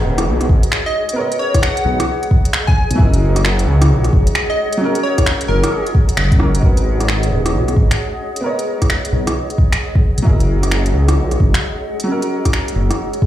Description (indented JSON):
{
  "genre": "future garage",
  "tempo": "132 BPM",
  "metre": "4/4",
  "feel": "swing 64% on 16ths",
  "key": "G# minor",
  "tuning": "A4 = 445 Hz",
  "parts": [
    { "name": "clear upright piano", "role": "accompaniment", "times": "0.0-13.3 s", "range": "F#3 to D#5", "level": "-24 LUFS", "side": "right 1 dB", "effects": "sidechain pumping, digital delay" },
    { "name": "granular cloud pad", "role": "sustained chords", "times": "0.0-13.3 s", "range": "G#4 to F#5", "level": "-24 LUFS", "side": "equal", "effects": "built-in reverb, sidechain pumping" },
    { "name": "swelling detuned saw bass", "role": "bass", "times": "0.0-12.9 s", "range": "D#1 to C#2", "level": "-15 LUFS", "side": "equal", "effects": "sidechain pumping" },
    { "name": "organic electronic drum kit", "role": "drums", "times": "0.2-13.2 s", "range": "finger snaps, hi-hat, rim click", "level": "-21 LUFS", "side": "equal", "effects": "overdrive" },
    { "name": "electronic kick drum", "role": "drums", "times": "0.5-13.3 s", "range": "none", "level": "-14 LUFS", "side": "equal", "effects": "overdrive" },
    { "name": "plucky unison lead", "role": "melody", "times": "0.9-5.9 s", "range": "A#4 to G#5", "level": "-21 LUFS", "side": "left 1 dB", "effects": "digital delay" }
  ],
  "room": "light reverb",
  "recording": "played on a big sound system in a bare room, large studio reverb",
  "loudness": "-13 LUFS",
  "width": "side -12 dB against mid",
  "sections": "0.0-6.6 A section; 6.6-13.3 B section",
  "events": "band accent 6.2",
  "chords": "0.0 G#m9; 1.2 Bmaj9; 3.0 F#13; 4.8 D#m7/F#; 6.6 G#m9; 8.4 Bmaj9; 10.3 F#13; 12.1 D#m7/F#"
}